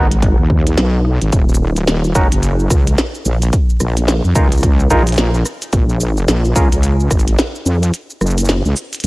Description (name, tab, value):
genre	glitch hop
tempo	109 BPM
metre	4/4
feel	swing 60% on 16ths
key	unclear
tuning	A4 = 440 Hz
part	mellow clav	stabs	0.0-6.7 s	Db4 to Bb4	-20 LUFS	right 1 dB	sidechain pumping, analog delay
part	wobble bass	bass	0.0-9.1 s	Eb1 to F2	-14 LUFS	equal	chorus
part	glitchy drum kit	drums	0.1-9.1 s	hi-hat, rim click, shaker, snare drum	-19 LUFS	equal	none
part	electronic kick drum	drums	0.2-7.2 s	none	-14 LUFS	equal	none
part	reverse cymbal	sound effects	9.0-9.1 s	none	barely audible	none	none
room	digital ambience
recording	dry, gritty hardware recording, vinyl crackle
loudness	-12 LUFS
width	side -22 dB against mid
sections	0.0-9.1 A section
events	break 7.9-9.1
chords	0.0 Abm; 1.3 Ebm7; 3.5 Db6; 5.7 Bbm7; 7.9 N.C.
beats	0.23 0.78 | 1.33 1.88 2.43 2.98 | 3.53 4.08 4.63 5.18 | 5.73 6.28 6.83 7.38 | 7.93 8.48 9.03